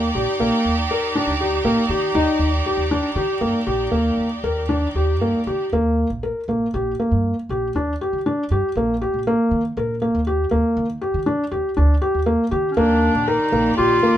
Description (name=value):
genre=contemporary instrumental, chamber music in an uneven meter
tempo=119 BPM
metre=7/4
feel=straight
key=Eb major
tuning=A4 = 435 Hz
part: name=clear studio string section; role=sustained chords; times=0.0-5.7, 12.8-14.2 s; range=Eb3 to D5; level=-26 LUFS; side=right 2 dB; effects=none
part: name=felt-muted upright piano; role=arpeggios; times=0.0-14.2 s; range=Bb3 to Bb4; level=-20 LUFS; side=equal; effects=none
part: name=upright bass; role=bass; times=0.0-14.0 s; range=Bb1 to Eb3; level=-24 LUFS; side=right 1 dB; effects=none
part: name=warm clarinet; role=second line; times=12.7-14.2 s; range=Db4 to F4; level=-18 LUFS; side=left 1 dB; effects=none
room=light reverb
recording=minimal, uncompressed stereo recording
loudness=-18 LUFS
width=side -11 dB against mid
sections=0.0-5.7 A section; 5.7-14.2 B section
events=none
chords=0.0 Ebmaj7